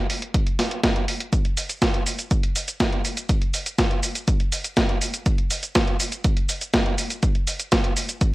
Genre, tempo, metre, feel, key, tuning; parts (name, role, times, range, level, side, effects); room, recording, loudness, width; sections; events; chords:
italo disco; 122 BPM; 4/4; straight
gated 80s digital drum machine; drums; 0.1-8.3 s; cabasa, hi-hat, snare drum; -23 LUFS; right 1 dB; gated reverb, gated reverb snare
electronic kick drum; drums; 0.3-8.3 s; -22 LUFS; equal
little or no reverb; dry, gritty hardware recording, vinyl crackle; -20 LUFS; side -19 dB against mid
0.0-8.3 A section